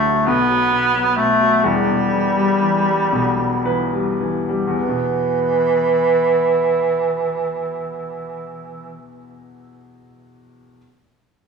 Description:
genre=six-eight pop ballad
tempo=34-45 BPM (dotted quarters)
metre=6/8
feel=straight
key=E minor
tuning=A4 = 440 Hz
part: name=clear bass clarinet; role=melody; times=0.0-9.0 s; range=E3 to B3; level=-17 LUFS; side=right 1 dB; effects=analog delay
part: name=clear baby grand piano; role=accompaniment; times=0.0-10.8 s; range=D1 to B4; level=-22 LUFS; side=left 2 dB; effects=none
room=moderate studio reverb, RT60 1.0 s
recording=band playing live in one room, studio reverb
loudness=-16 LUFS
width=side -5 dB against mid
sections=0.0-4.8 A section; 4.8-8.3 B section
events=slowing down 0.0-4.8; grand piano fill 3.1-4.8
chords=0.2 B5; 1.6 Em; 4.8 E5

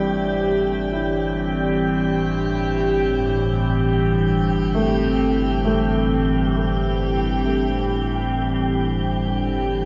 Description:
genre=ambient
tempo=free time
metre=none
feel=none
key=unclear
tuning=A4 = 440 Hz
part: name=evolving wavetable pad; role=sustained chords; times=0.0-9.9 s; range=A2 to G4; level=-23 LUFS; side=equal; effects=phaser, built-in reverb
part: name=felt-muted upright piano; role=arpeggios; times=0.0-9.9 s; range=A3 to A4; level=-31 LUFS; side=equal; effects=diffuse ambient delay
part: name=deep rumbling drone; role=bass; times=0.0-9.9 s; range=G1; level=-30 LUFS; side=equal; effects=built-in reverb
part: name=analog drone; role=drone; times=0.0-9.9 s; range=G3 to D4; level=-29 LUFS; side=equal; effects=chorus
part: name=wind-like tuned noise texture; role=texture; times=0.0-9.9 s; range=G5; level=-32 LUFS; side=equal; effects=built-in reverb
room=wet huge ambient reverb, RT60 9.6 s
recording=in a vast, echoing space, nothing above 7.5 kHz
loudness=-21 LUFS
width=mono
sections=0.0-9.9 A section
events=none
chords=0.0 Am7/G

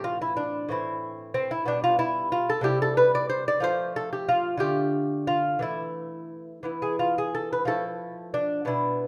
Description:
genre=classical, baroque-style dance for lute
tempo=60 BPM (dotted quarters)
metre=6/8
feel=rubato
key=unclear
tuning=A4 = 440 Hz
part: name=lute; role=solo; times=0.0-9.1 s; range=A2 to D5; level=-27 LUFS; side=equal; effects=none
room=moderate recital hall reverb, RT60 1.3 s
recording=none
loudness=-26 LUFS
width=mono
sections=0.0-9.1 A section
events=none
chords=0.0 Am; 1.7 G/B; 2.6 C; 3.6 F; 4.6 Dm; 5.6 Esus4; 6.7 E5; 7.7 Fmaj7

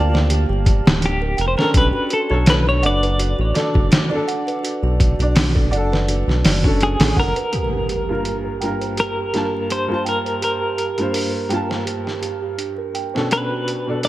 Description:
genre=trip hop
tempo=83 BPM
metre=4/4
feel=swing 55% on 16ths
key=G minor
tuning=A4 = 439 Hz
part: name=clean electric guitar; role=melody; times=0.0-14.1 s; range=G4 to D5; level=-23 LUFS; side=left 1 dB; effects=tremolo, tape echo
part: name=clear upright piano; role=accompaniment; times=0.0-14.1 s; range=G2 to A5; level=-24 LUFS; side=equal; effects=tremolo, tape echo
part: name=music box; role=arpeggios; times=0.0-14.1 s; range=D4 to G5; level=-26 LUFS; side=right 5 dB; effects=low-pass filter, ping-pong delay
part: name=round analog bass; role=bass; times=0.0-7.3 s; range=D1 to D2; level=-19 LUFS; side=equal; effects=none
part: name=trip hop sampler-style drum kit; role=drums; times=0.1-14.1 s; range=hi-hat, kick drum, snare drum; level=-19 LUFS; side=equal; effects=overdrive, high-pass filter on kick, high-pass filter on hats, high-pass filter on snare, gated reverb
part: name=impact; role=sound effects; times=7.5-10.4 s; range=none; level=-27 LUFS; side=equal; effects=none
room=light reverb, digital ambience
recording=bright 1980s-style digital production, vinyl crackle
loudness=-16 LUFS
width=side -15 dB against mid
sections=0.0-7.5 A section; 7.5-14.1 B section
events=impact 7.5-10.4; filter sweep on music box 7.5-14.1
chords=0.0 Gm7; 1.7 Bm7; 7.5 Gm7; 13.3 Bm7

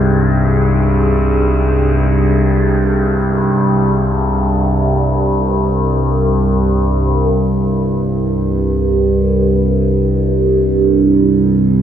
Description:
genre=dark ambient drone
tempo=free time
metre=none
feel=none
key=C minor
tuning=A4 = 439 Hz
part: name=dark analog pad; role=sustained chords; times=0.0-7.1 s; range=Eb4 to Ab4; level=-24 LUFS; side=equal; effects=chorus
part: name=overtone-sweeping drone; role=drone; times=0.0-11.8 s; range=C2 to G2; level=-12 LUFS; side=equal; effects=chorus, built-in reverb
room=wet cathedral reverb, RT60 6.2 s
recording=small room reverb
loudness=-12 LUFS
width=side -9 dB against mid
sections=0.0-7.1 A section; 7.1-11.8 B section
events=fade-out on analog synth pad 0.0-7.1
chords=0.0 Ab5; 7.1 C5

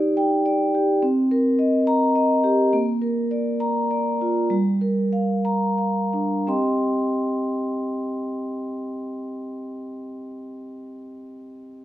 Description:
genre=classical, contemporary piece for solo vibraphone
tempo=86-106 BPM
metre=3/4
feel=straight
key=C minor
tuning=A4 = 440 Hz
part: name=vibraphone with soft mallets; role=solo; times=0.0-11.8 s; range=G3 to C6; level=-20 LUFS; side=equal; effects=none
room=moderate large studio reverb, RT60 1.4 s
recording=dark, warm production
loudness=-20 LUFS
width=side -13 dB against mid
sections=0.0-6.5 A section; 6.5-10.6 B section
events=slowing down 1.9-6.5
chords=0.0 Ebmaj7; 1.0 Cm7; 2.7 Bb; 4.5 Gm7; 6.5 Cm

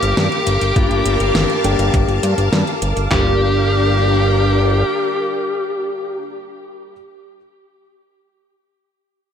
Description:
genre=synthwave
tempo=102 BPM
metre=4/4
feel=straight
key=G minor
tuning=A4 = 437 Hz
part: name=dark smooth lead guitar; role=melody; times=0.0-6.2 s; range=G4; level=-20 LUFS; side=left 2 dB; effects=overdrive, ping-pong delay
part: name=string machine, full ensemble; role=sustained chords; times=0.0-6.2 s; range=D4 to D6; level=-21 LUFS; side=equal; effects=phaser, ensemble chorus, sidechain pumping
part: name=warm grand piano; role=stabs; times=0.0-6.9 s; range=G2 to G4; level=-26 LUFS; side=left 4 dB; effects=low-pass filter, digital delay
part: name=fat analog bass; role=bass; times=0.0-4.8 s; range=G1 to G2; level=-18 LUFS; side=equal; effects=tube saturation
part: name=pop drum kit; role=drums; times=0.0-3.1 s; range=hi-hat, snare drum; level=-22 LUFS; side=equal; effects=small room ambience, gated reverb
part: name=detuned 8-bit digital drum machine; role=drums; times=0.8-3.3 s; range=handclaps, kick drum, snare drum, toms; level=-17 LUFS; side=equal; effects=small room ambience, gated reverb
room=light reverb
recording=none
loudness=-14 LUFS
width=side -8 dB against mid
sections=0.0-3.1 A section; 3.1-5.5 B section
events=filter sweep on grand piano 0.0-3.1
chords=0.0 Gm7

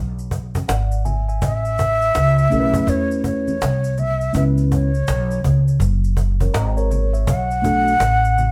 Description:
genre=hip hop, jazz-hop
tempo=82 BPM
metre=4/4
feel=swing 64% on 16ths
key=unclear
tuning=A4 = 437 Hz
part: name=upright bass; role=bass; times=0.0-8.5 s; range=F#1 to E2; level=-21 LUFS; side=equal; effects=none
part: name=maracas and congas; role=percussion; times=0.2-8.5 s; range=none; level=-35 LUFS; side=equal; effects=none
part: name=cajon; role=drums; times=0.3-8.5 s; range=none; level=-26 LUFS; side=equal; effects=none
part: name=mellow tine electric piano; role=accompaniment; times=0.7-7.9 s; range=G#3 to A#5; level=-25 LUFS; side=equal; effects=none
part: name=breathy mellow concert flute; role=melody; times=1.4-8.5 s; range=C#5 to F#5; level=-22 LUFS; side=equal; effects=none
room=moderate studio reverb, RT60 0.7 s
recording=band playing live in one room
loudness=-19 LUFS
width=mono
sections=0.0-8.5 A section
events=tine electric piano fill 6.2-7.3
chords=0.0 E7; 1.4 Amaj9; 4.3 C#m7; 5.8 F#69; 7.3 Bm7

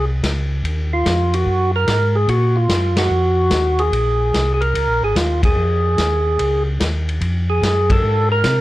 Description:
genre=soul jazz organ trio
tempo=146 BPM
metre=4/4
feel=swing 67% on 8ths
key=Bb minor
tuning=A4 = 440 Hz
part: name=percussive tonewheel organ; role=melody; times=0.0-8.6 s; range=F4 to Bb4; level=-18 LUFS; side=right 1 dB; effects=overdrive, slow rotary speaker
part: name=mellow tonewheel organ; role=bass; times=0.0-8.6 s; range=Ab1 to C3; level=-18 LUFS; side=equal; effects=slow rotary speaker
part: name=vintage drum kit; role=drums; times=0.2-8.6 s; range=hi-hat, kick drum, ride cymbal, snare drum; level=-23 LUFS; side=left 1 dB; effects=none
room=moderate studio reverb, RT60 0.5 s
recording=worn, warbling old tape, cassette tape, warbly pitch drift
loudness=-15 LUFS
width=side -16 dB against mid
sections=0.0-8.6 A section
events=band accent 2.9, 5.4, 7.8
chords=0.0 Bbmadd9 (rootless); 0.6 Ebmadd9; 3.9 Bbm9; 7.2 F(#9)

